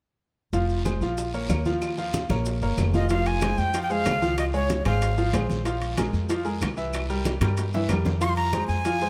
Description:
latin, salsa; 188 BPM; 4/4; straight; F minor; A4 = 439 Hz
bright grand piano; accompaniment; 0.5-9.1 s; E3 to F5; -30 LUFS; equal
upright bass; bass; 0.5-9.1 s; F1 to G2; -29 LUFS; equal
bongos; percussion; 0.5-9.0 s; -37 LUFS; equal
congas; percussion; 0.5-9.1 s; -36 LUFS; equal
guiro; percussion; 0.5-9.1 s; -45 LUFS; equal
maracas; percussion; 0.5-9.1 s; -46 LUFS; equal
claves; percussion; 0.9-8.7 s; -45 LUFS; equal
breathy bright jazz flute; melody; 3.0-5.5, 8.2-9.1 s; Db5 to Db6; -30 LUFS; equal
timbales; percussion; 3.1-9.0 s; -40 LUFS; equal
light reverb; -25 LUFS; mono
0.5-3.1 A section; 3.1-9.1 B section
drum fill 7.4-8.2
0.5 Fm; 1.2 Bbm; 3.1 Fm; 4.4 Dbmaj7; 5.7 Bb5; 6.9 C7; 8.2 Fm
| 0.54 0.86 1.18 1.50 | 1.82 2.14 2.46 2.78 | 3.10 3.42 3.74 4.06 | 4.38 4.70 5.02 5.34 | 5.66 5.98 6.30 6.62 | 6.94 7.26 7.58 7.90 | 8.21 8.53 8.85

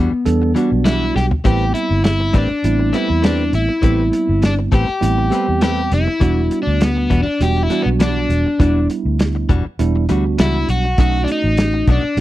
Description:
straight-eighth soul blues; 101 BPM; 4/4; swing 54% on 16ths; E minor; A4 = 437 Hz
overdriven semi-hollow guitar; melody; 0.0-12.2 s; B3 to G4; -19 LUFS; left 2 dB; slapback echo
bell-like tine electric piano; accompaniment; 0.0-12.2 s; G3 to A4; -21 LUFS; right 7 dB
direct-recorded clean electric guitar; stabs; 0.0-12.1 s; B2 to B4; -24 LUFS; left 6 dB
vintage muted fingered electric bass; bass; 0.0-12.2 s; E1 to E2; -18 LUFS; equal
warm soul drum kit; drums; 0.3-12.2 s; hi-hat, kick drum, snare drum, toms; -17 LUFS; equal
little or no reverb; dry, close 1970s-style studio recording; -14 LUFS; side -15 dB against mid
0.0-12.2 A section
drum fill 1.2
0.0 Em9; 1.5 Am9; 6.2 Em9; 11.0 B7
0.26 0.86 | 1.45 2.05 2.64 3.24 | 3.83 4.43 5.03 5.62 | 6.22 6.81 7.41 8.00 | 8.60 9.19 9.79 10.38 | 10.98 11.57 12.17

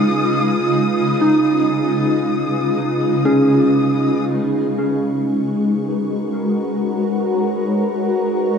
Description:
ambient; free time; G# dorian; A4 = 440 Hz
granular cloud pad; sustained chords; 0.0-8.6 s; C#3 to C#5; -17 LUFS; equal; built-in reverb
soft synth bell; arpeggios; 0.0-6.6 s; C#4 to E#6; -20 LUFS; equal; chorus, analog delay
muted chamber violin section; texture; 0.0-8.6 s; C#6 to D#6; -27 LUFS; left 1 dB
wet plate reverb, RT60 2.8 s; echo-heavy mix, cassette tape; -15 LUFS; side -6 dB against mid
0.0-4.3 A section; 4.3-8.6 B section
filter sweep on ambient pad 4.3-8.6
0.0 C#9; 4.3 G#m11
free time

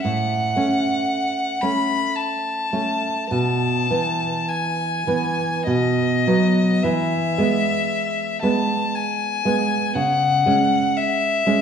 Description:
romantic duo for violin and classical guitar; 50-60 BPM; 3/4; rubato; E major; A4 = 441 Hz
rich violin; melody; 0.0-11.6 s; D#5 to B5; -22 LUFS; left 4 dB
nylon-string guitar; accompaniment; 0.0-11.6 s; A2 to C#4; -21 LUFS; right 2 dB
wet recital hall reverb, RT60 1.5 s; recorded in a church or concert hall, nothing above 10.3 kHz; -18 LUFS; side -7 dB against mid
0.0-11.6 A section
0.0 F#m/A; 3.3 E/B; 5.7 B; 6.8 E; 10.0 C#m
| 0.04 1.08 2.17 | 3.31 4.49 5.67 | 6.83 7.90 8.94 | 9.95 10.96

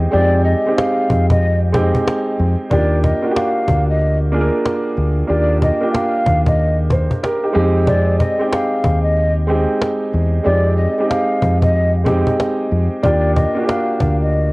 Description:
hip hop, boom-bap hip-hop; 93 BPM; 4/4; swing 63% on 16ths; Eb major; A4 = 440 Hz
warm upright piano; accompaniment; 0.0-14.5 s; Ab3 to C5; -18 LUFS; right 1 dB; cassette tape, high-pass filter, low-pass filter
deep dub fingered electric bass; bass; 0.0-14.5 s; D2 to F2; -16 LUFS; equal
breathy mellow silver concert flute; melody; 0.1-14.5 s; D5 to F5; -20 LUFS; left 1 dB; high-pass filter, low-pass filter, cassette tape, analog delay
cajon; drums; 0.1-14.4 s; -20 LUFS; equal; cassette tape
light reverb, studio reverb; home recording on cassette; -14 LUFS; side -23 dB against mid
0.0-2.7 A section; 2.7-14.5 B section
0.0 Fm7; 2.7 Ebmaj7; 7.6 Fm7; 13.0 Ebmaj7
| 0.13 0.78 1.42 2.07 | 2.71 3.36 4.00 4.65 | 5.29 5.94 6.58 7.23 | 7.87 8.52 9.16 9.81 | 10.45 11.10 11.74 12.39 | 13.04 13.68 14.32

